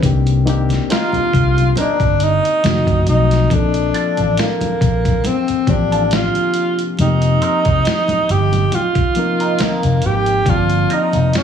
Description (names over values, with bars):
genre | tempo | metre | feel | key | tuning
R&B, neo-soul | 69 BPM | 4/4 | swing 55% on 16ths | Bb major | A4 = 440 Hz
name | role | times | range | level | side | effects
reed electric piano | accompaniment | 0.0-11.4 s | Eb3 to A5 | -21 LUFS | left 5 dB | overdrive
vintage muted fingered electric bass | bass | 0.0-11.3 s | F1 to C2 | -16 LUFS | equal | none
boom bap sampler-style drum kit | drums | 0.0-11.4 s | hi-hat, kick drum, snare drum | -22 LUFS | right 1 dB | none
congas | percussion | 0.3-11.3 s | none | -26 LUFS | right 2 dB | none
breathy tenor saxophone | melody | 0.9-11.4 s | Bb3 to G4 | -17 LUFS | equal | slapback echo
vintage hollow-body jazz guitar | second line | 0.9-11.3 s | C4 to Bb4 | -26 LUFS | right 5 dB | wah
room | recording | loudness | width
little or no reverb | heavily compressed radio sound, studio ambience | -13 LUFS | side -8 dB against mid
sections
0.0-3.5 A section; 3.5-11.4 B section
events
none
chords
0.0 Cm7; 2.6 F7b9; 3.5 Bbmaj7; 7.0 F7sus4; 10.5 Gm11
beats
| 0.02 0.89 1.76 2.63 | 3.50 4.37 5.24 6.11 | 6.98 7.85 8.72 9.59 | 10.46 11.33